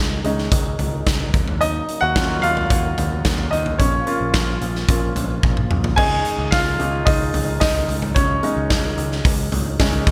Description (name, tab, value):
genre	piano-driven pop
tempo	110 BPM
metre	4/4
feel	straight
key	unclear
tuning	A4 = 440 Hz
part	clear baby grand piano	accompaniment	0.0-10.1 s	Gb3 to Ab5	-24 LUFS	equal	none
part	tonewheel organ	sustained chords	0.0-10.1 s	Db3 to F4	-35 LUFS	equal	none
part	overdriven picked electric bass	bass	0.0-10.1 s	Bb1 to Eb2	-27 LUFS	equal	none
part	huge arena drum kit	drums	0.2-10.1 s	crash cymbal, hi-hat, kick drum, snare drum, toms	-22 LUFS	equal	none
room	moderate lush hall reverb, RT60 1.8 s, studio ambience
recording	bright 1980s-style digital production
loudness	-20 LUFS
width	mono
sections	0.0-6.0 A section; 6.0-10.1 B section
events	grand piano solo 0.0-6.0, 6.0-10.1; drum fill 5.4-6.0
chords	0.0 Dbsus2; 1.3 Ebm7; 3.8 Bbm; 6.0 Dbsus2